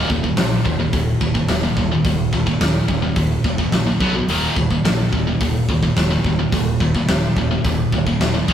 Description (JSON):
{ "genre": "heavy metal", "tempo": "107 BPM", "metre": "4/4", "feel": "straight", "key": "unclear", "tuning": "A4 = 440 Hz", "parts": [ { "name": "high-gain distorted guitar", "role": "riff", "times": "0.0-8.5 s", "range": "Eb2 to B3", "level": "-18 LUFS", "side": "equal", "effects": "distortion" }, { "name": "growling fingered electric bass", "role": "bass", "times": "0.1-8.5 s", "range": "Eb1 to B1", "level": "-24 LUFS", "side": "equal", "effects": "overdrive" }, { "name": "big rock drum kit", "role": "drums", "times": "0.1-8.5 s", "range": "hi-hat, kick drum, snare drum", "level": "-21 LUFS", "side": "equal", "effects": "none" } ], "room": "moderate small room reverb, RT60 0.6 s", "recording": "rough rehearsal-room recording, warm saturation", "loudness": "-16 LUFS", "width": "side -9 dB against mid", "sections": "0.0-8.5 A section", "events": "none", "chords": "0.0 Eb5; 4.0 B5; 4.3 Eb5" }